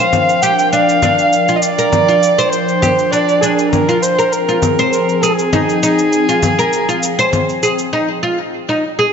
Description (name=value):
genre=organic downtempo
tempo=100 BPM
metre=4/4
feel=swing 53% on 16ths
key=F dorian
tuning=A4 = 440 Hz
part: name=dark kamancheh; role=melody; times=0.0-7.9 s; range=Ab4 to G5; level=-15 LUFS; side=equal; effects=ping-pong delay
part: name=airy breathy pad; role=sustained chords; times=0.0-7.9 s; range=F3 to G5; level=-20 LUFS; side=equal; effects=chorus, sidechain pumping
part: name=oud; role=arpeggios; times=0.0-9.1 s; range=D4 to C5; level=-16 LUFS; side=equal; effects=low-pass filter, ping-pong delay
part: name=bronze singing bowl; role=texture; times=0.0-7.9 s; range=none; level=barely audible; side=none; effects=none
part: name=congas and cabasa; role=drums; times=0.1-7.9 s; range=none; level=-20 LUFS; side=left 2 dB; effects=none
room=moderate concert hall reverb, RT60 2.0 s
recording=nothing above 7.8 kHz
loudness=-11 LUFS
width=side -6 dB against mid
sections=0.0-9.1 A section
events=none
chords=0.0 Gm7; 4.3 Fm7